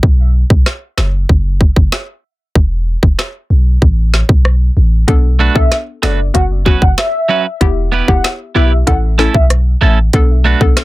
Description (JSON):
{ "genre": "dancehall", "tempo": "95 BPM", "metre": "4/4", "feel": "straight", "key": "B minor", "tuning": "A4 = 440 Hz", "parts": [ { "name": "warm 808-style bass", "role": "bass", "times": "0.0-10.7 s", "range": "E1 to B1", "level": "-12 LUFS", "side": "equal", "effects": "none" }, { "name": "island pop drum kit", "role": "drums", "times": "0.0-10.8 s", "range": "hi-hat, kick drum, rim click, snare drum", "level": "-11 LUFS", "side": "equal", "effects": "soft clipping on snare" }, { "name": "hollow square pluck", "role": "accompaniment", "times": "5.1-10.8 s", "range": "B3 to A4", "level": "-19 LUFS", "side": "left 4 dB", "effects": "chorus" }, { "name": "clean electric guitar", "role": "arpeggios", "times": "5.4-10.6 s", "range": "F#3 to B4", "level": "-14 LUFS", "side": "right 6 dB", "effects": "none" }, { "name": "warm velvety synth lead", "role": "melody", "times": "5.6-9.4 s", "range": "D5 to F#5", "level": "-18 LUFS", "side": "equal", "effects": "chorus, ping-pong delay" } ], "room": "little or no reverb", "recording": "dense, heavily limited modern master", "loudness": "-10 LUFS", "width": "side -18 dB against mid", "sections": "0.0-10.8 A section", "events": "break 0.0-5.1; hi-hats muted 2.6-5.1", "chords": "0.0 B5; 1.3 N.C.; 2.6 E5; 3.8 Asus2; 5.1 Bm7; 6.3 F#sus4; 7.6 Em; 8.9 A; 10.1 Bm7" }